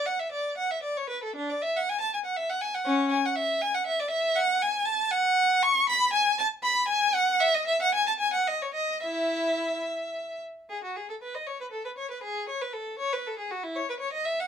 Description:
classical, baroque-style suite movement for unaccompanied violin; 70-81 BPM (dotted quarters); 6/8; rubato; E major from 4.4 s; A4 = 439 Hz
rich violin; solo; 0.0-14.5 s; C#4 to C#6; -25 LUFS; equal
light reverb; close, detailed microphones; -25 LUFS; side -8 dB against mid
0.0-10.7 A section; 10.7-14.5 B section

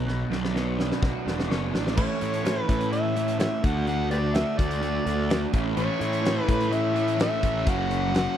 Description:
classic rock; 126 BPM; 4/4; straight; A4 = 439 Hz
cranked stack guitar; riff; 0.0-8.4 s; A2 to C#5; -32 LUFS; left 13 dB; overdrive, phaser
overdriven electric guitar; riff; 0.0-8.4 s; A2 to F#4; -30 LUFS; right 12 dB; spring reverb
fuzz picked electric bass; bass; 0.0-8.3 s; E1 to A2; -28 LUFS; left 1 dB; overdrive
big rock drum kit; drums; 0.1-8.3 s; crash cymbal, hi-hat, kick drum, snare drum; -28 LUFS; equal
overdriven harmonica; melody; 2.0-8.4 s; G4 to F#5; -29 LUFS; left 1 dB; slapback echo
distorted electric guitar; riff; 5.8-8.4 s; F#2 to A3; -32 LUFS; left 2 dB; overdrive
little or no reverb; dry, close 1970s-style studio recording; -23 LUFS; side -10 dB against mid
0.0-2.0 A section; 2.0-8.4 B section
drum fill 0.1-2.0
0.0 Bmadd9; 2.0 A; 3.6 D; 5.5 A; 7.7 F#

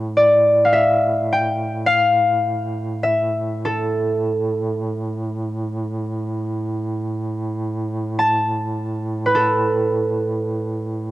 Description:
caucasian folk, Caucasian lament; free time; A4 = 440 Hz
mellow duduk; drone; 0.0-11.1 s; A2; -24 LUFS; right 1 dB; cassette tape
concert harp; melody; 0.2-11.1 s; A4 to A5; -17 LUFS; equal
light reverb; home recording on cassette; -18 LUFS; side -15 dB against mid
0.0-11.1 A section

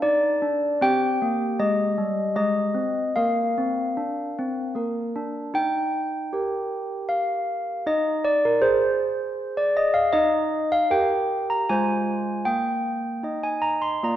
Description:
classical, tune for handbells; 78 BPM; 3/4; straight; Eb major; A4 = 440 Hz
handbells; solo; 0.0-14.2 s; G3 to C6; -21 LUFS; equal
moderate concert hall reverb, RT60 1.8 s; dark, warm production; -21 LUFS; side -11 dB against mid
0.0-5.6 A section; 5.6-14.2 B section
0.0 Bb; 0.8 Cm; 3.2 Bb5; 4.8 Bb; 5.6 Eb; 7.9 Ab/Eb; 10.1 Eb; 11.7 Fm/Ab; 12.5 Eb/Bb

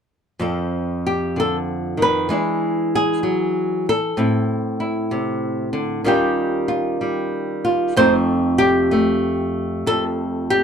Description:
solo jazz; 63 BPM; 4/4; swing 66% on 8ths, rubato; A4 = 441 Hz
flamenco guitar; solo; 0.4-10.6 s; F2 to C5; -18 LUFS; equal
light reverb; close, detailed microphones; -18 LUFS; side -7 dB against mid
0.4-8.0 A section; 8.0-10.6 B section
0.4 F7; 2.3 E7; 4.2 Am; 6.1 Eb9; 8.0 F9

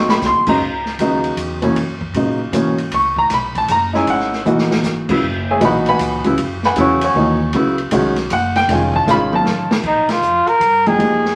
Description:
modal jazz; 156 BPM; 3/4; swing 65% on 8ths; A4 = 437 Hz
warm baby grand piano; accompaniment; 0.0-11.4 s; A#2 to C#6; -17 LUFS; equal
upright bass; bass; 0.0-11.4 s; F1 to A#2; -28 LUFS; equal
open jazz drum kit; drums; 0.1-11.3 s; crash cymbal, hi-hat, kick drum, ride cymbal, snare drum, toms; -26 LUFS; equal
warm trumpet; melody; 9.9-11.4 s; Eb4 to Bb4; -16 LUFS; equal
wet studio reverb, RT60 0.8 s; vinyl crackle, faint mains hum; -16 LUFS; mono
0.6-9.8 A section; 9.8-11.4 B section
drum fill 0.0, 4.5-4.8, 9.1-9.8; band accent 10.0
0.0 Ab9; 0.6 F#9sus4; 8.7 F7alt; 9.8 Bb7sus4

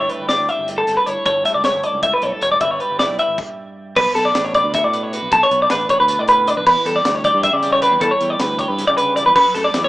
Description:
math rock and midwest emo; 311 BPM (eighths); 7/8; straight; A4 = 440 Hz
twelve-string electric guitar; accompaniment; 0.0-9.9 s; G2 to B4; -29 LUFS; right 4 dB
twelve-string electric guitar; arpeggios; 0.0-9.9 s; A4 to E5; -14 LUFS; equal
growling fingered electric bass; bass; 0.0-9.9 s; E1 to C#3; -28 LUFS; equal; overdrive
crisp fusion drum kit; drums; 0.1-9.8 s; crash cymbal, hi-hat, kick drum, snare drum; -27 LUFS; equal
light reverb, small room ambience; rough home demo mix, small speaker sound; -14 LUFS; side -17 dB against mid
0.0-4.0 A section; 4.0-9.9 B section
stop 3.4-4.0
0.0 A7sus4/G; 1.3 F#m7/G; 2.6 G6; 4.0 Bm7; 6.7 Em7; 9.4 F#m7

